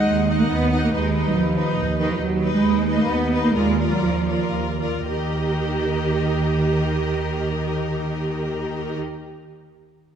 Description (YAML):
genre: classical, dramatic, fast romantic movement for symphony orchestra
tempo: 110-142 BPM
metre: 3/4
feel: rubato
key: unclear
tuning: A4 = 440 Hz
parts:
  - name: rich symphonic violin section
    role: melody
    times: 0.0-9.0 s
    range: D5 to Gb5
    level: -33 LUFS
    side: left 4 dB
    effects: none
  - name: clear chamber violin section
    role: second line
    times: 0.0-9.0 s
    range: Bb4 to Eb5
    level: -29 LUFS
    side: left 6 dB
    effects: none
  - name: rich symphonic viola section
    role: accompaniment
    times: 0.0-9.0 s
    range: Eb4 to G4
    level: -27 LUFS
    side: right 2 dB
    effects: none
  - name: rich symphonic cello section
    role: bass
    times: 0.0-9.0 s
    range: Eb3 to Cb4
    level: -23 LUFS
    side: right 3 dB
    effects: none
  - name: warm symphonic double bass section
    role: bass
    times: 0.0-9.0 s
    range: Eb2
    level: -25 LUFS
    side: right 2 dB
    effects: none
room: moderate scoring stage reverb, RT60 1.9 s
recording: dark, warm production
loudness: -19 LUFS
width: side -8 dB against mid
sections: 0.0-5.1 A section; 5.1-8.2 B section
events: slowing down 1.6-5.1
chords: 0.0 Ebm; 0.9 Abm/Eb; 3.5 Bb7/Eb; 5.1 Eb